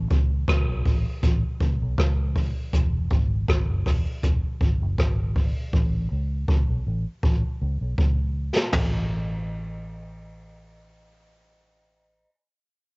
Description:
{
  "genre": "roots reggae",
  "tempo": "80 BPM",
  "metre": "4/4",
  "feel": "straight",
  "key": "A major",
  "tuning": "A4 = 442 Hz",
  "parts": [
    { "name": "vintage muted fingered electric bass", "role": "bass", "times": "0.0-12.2 s", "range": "E1 to C#2", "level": "-26 LUFS", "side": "equal", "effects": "none" },
    { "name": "jazz brush drum kit", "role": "drums", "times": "0.1-8.9 s", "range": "crash cymbal, hi-hat, kick drum, rim click, snare drum, toms", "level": "-23 LUFS", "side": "equal", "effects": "cassette tape" }
  ],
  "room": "little or no reverb",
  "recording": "home recording on cassette, nothing above 7.7 kHz",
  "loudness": "-22 LUFS",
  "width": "side -39 dB against mid",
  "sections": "0.0-8.7 A section; 8.7-11.7 B section",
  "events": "drum fill 5.7-8.7",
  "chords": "none",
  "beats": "0.48 1.23 1.98 | 2.73 3.48 4.23 4.98 | 5.73 6.48 7.23 7.98 | 8.73 9.48 10.23 10.98"
}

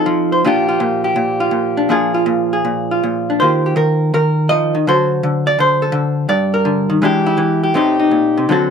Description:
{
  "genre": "solo jazz",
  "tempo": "164 BPM",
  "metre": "4/4",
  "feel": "swing 66% on 8ths, rubato",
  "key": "unclear",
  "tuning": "A4 = 436 Hz",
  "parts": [
    { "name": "vintage hollow-body jazz guitar", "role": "solo", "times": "0.0-8.7 s", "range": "G2 to Eb5", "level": "-13 LUFS", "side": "equal", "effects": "none" }
  ],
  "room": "light reverb",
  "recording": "none",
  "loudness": "-13 LUFS",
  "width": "side -6 dB against mid",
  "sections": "0.0-8.7 A section",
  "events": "none",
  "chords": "0.4 Bb6; 1.9 Bb7; 3.4 Ebadd9; 4.9 D7; 6.3 Gm; 7.0 E7#9; 7.8 Am7b5",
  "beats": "0.07 | 0.43 0.79 1.15 1.52 | 1.88 2.26 2.63 3.02 | 3.39 3.77 4.13 4.50 | 4.86 5.22 5.58 5.94 | 6.29 6.66 7.02 7.39 | 7.76 8.13 8.51"
}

